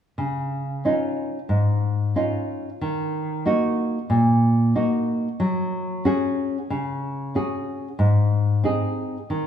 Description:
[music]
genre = italian folk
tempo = 92 BPM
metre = 4/4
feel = straight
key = Db major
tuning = A4 = 439 Hz
[part]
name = nylon-string guitar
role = accompaniment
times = 0.2-9.5 s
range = Ab2 to Ab4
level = -21 LUFS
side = equal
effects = none
[sound]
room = wet recital hall reverb, RT60 1.6 s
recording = minimal, uncompressed stereo recording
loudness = -21 LUFS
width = side -8 dB against mid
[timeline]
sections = 0.2-9.5 A section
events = none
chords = 0.2 Dbadd9; 2.8 Ebm; 5.4 Gbsus2; 8.0 Ab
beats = | 0.19 0.86 1.52 2.17 | 2.82 3.47 4.12 4.76 | 5.41 6.05 6.70 7.36 | 8.00 8.65 9.30

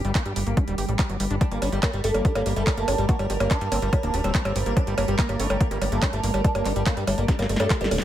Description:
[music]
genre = psychedelic trance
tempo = 143 BPM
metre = 4/4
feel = straight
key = G minor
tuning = A4 = 442 Hz
[part]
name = evolving wavetable pad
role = sustained chords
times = 0.0-8.0 s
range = G3 to Bb4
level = -32 LUFS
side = right 5 dB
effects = chorus, built-in reverb, phaser, vintage 12-bit sampler grit, sidechain pumping
[part]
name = overdriven acid bass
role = riff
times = 0.0-8.0 s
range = F#3 to G4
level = -31 LUFS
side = equal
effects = distortion, auto-pan, sidechain pumping, tape echo
[part]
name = plucky analog bass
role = bass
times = 0.0-8.0 s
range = D1 to G2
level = -26 LUFS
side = equal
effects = none
[part]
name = techno drum kit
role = drums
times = 0.0-8.0 s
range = handclaps, hi-hat, percussion blips, snare drum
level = -28 LUFS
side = right 1 dB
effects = none
[part]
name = electronic kick drum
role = drums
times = 0.2-7.8 s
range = none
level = -22 LUFS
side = equal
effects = none
[part]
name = oud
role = melody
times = 1.4-8.0 s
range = G3 to F#4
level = -29 LUFS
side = equal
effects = phaser, sidechain pumping, ping-pong delay
[part]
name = zap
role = sound effects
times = 7.8-7.9 s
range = none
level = -29 LUFS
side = equal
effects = none
[sound]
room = light reverb, digital ambience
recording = none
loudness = -21 LUFS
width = side -12 dB against mid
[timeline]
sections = 0.0-8.0 A section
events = drum fill 7.3-8.0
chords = 0.0 G5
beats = 0.15 0.57 0.99 | 1.41 1.83 2.25 2.67 | 3.09 3.51 3.93 4.35 | 4.77 5.19 5.61 6.03 | 6.45 6.87 7.28 7.70

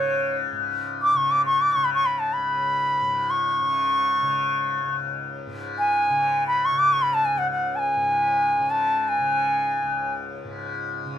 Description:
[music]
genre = indian classical, Hindustani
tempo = free time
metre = none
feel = none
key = C# raga bhairavi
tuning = A4 = 435 Hz
[part]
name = bright reedy bansuri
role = melody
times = 0.0-10.1 s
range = C#5 to D6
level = -20 LUFS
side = equal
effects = none
[part]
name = tanpura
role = drone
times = 0.0-11.2 s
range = C#2 to C#3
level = -28 LUFS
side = left 5 dB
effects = none
[sound]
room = light reverb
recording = minimal, uncompressed stereo recording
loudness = -20 LUFS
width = side -10 dB against mid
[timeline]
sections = 0.5-11.2 A section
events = none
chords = none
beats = free time

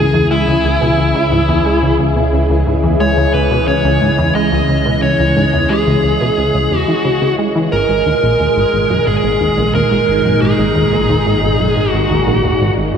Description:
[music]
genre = ambient, sequencer-driven space music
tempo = 89 BPM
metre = 4/4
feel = straight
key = C# dorian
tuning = A4 = 442 Hz
[part]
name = dark smooth lead guitar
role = melody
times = 0.0-12.7 s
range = E4 to D#5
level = -16 LUFS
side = equal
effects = overdrive, ping-pong delay
[part]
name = phased analog pad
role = sustained chords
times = 0.0-13.0 s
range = A#2 to G#4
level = -16 LUFS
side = equal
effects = phaser, chorus
[part]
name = plucky analog bass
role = riff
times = 0.0-13.0 s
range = G#1 to G#3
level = -17 LUFS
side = equal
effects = ensemble chorus, ping-pong delay
[part]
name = analog drone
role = bass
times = 0.0-13.0 s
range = G#1 to C#2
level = -22 LUFS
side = equal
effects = chorus
[sound]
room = wet lush hall reverb, RT60 3.0 s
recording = none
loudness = -11 LUFS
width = side -7 dB against mid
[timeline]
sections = 0.0-13.0 A section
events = filter sweep on analog synth bass 0.0-13.0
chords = 0.0 C#m; 7.7 G#sus2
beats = 0.31 0.98 1.66 | 2.33 3.00 3.68 4.35 | 5.03 5.70 6.37 7.05 | 7.72 8.40 9.07 9.74 | 10.42 11.09 11.77 12.44

